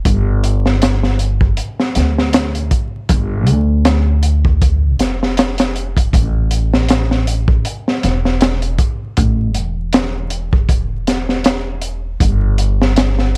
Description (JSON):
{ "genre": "trip hop", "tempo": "79 BPM", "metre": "4/4", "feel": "swing 56% on 16ths", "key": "unclear", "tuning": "A4 = 440 Hz", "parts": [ { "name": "upright bass", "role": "bass", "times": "0.0-13.4 s", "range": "E1 to D2", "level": "-15 LUFS", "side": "equal", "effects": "none" }, { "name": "crunchy breakbeat drum kit", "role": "drums", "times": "0.1-13.4 s", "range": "hi-hat, kick drum, snare drum", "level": "-15 LUFS", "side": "equal", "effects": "none" } ], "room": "little or no reverb", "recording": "dry, gritty hardware recording, vinyl crackle", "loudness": "-12 LUFS", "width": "side -39 dB against mid", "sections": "0.0-13.4 A section", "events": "none", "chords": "none" }